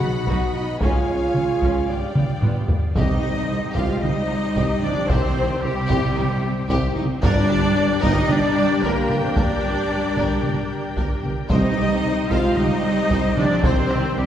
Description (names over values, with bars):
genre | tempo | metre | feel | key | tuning
cinematic, epic orchestral film score | 112 BPM | 4/4 | straight | C minor | A4 = 440 Hz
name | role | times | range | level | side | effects
warm symphonic violin section | melody | 0.0-14.3 s | C4 to F#5 | -33 LUFS | left 3 dB | none
rich symphonic violin section | second line | 0.0-14.3 s | G4 to B5 | -30 LUFS | left 2 dB | none
warm symphonic viola section | accompaniment | 0.0-14.3 s | G3 to F#4 | -30 LUFS | equal | none
mellow French horn section | sustained chords | 0.0-14.3 s | G3 to F#4 | -26 LUFS | left 1 dB | none
rich symphonic string section | sustained chords | 0.0-14.3 s | Ab3 to G5 | -31 LUFS | equal | none
mellow tuba | bass | 0.0-14.3 s | G1 to Db2 | -29 LUFS | right 2 dB | none
warm symphonic cello section | bass | 0.0-14.3 s | G2 to Ab3 | -27 LUFS | right 2 dB | none
warm symphonic double bass section | bass | 0.0-14.3 s | G1 to Db2 | -29 LUFS | right 2 dB | none
taiko ensemble | drums | 0.0-14.2 s | none | -24 LUFS | equal | none
bright concert flute | second line | 3.0-14.3 s | G4 to F5 | -30 LUFS | equal | none
timpani | percussion | 3.0-3.7, 7.2-8.0, 11.5-12.3 s | G2 to C3 | -28 LUFS | equal | none
room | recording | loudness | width
wet concert hall reverb, RT60 1.9 s | recorded in a church or concert hall | -18 LUFS | side -10 dB against mid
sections
0.0-3.0 A section; 3.0-14.3 B section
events
drum fill 2.2-3.0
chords
0.0 B; 0.8 Db; 1.9 G7; 3.0 Cm; 7.2 Gm; 11.5 Cm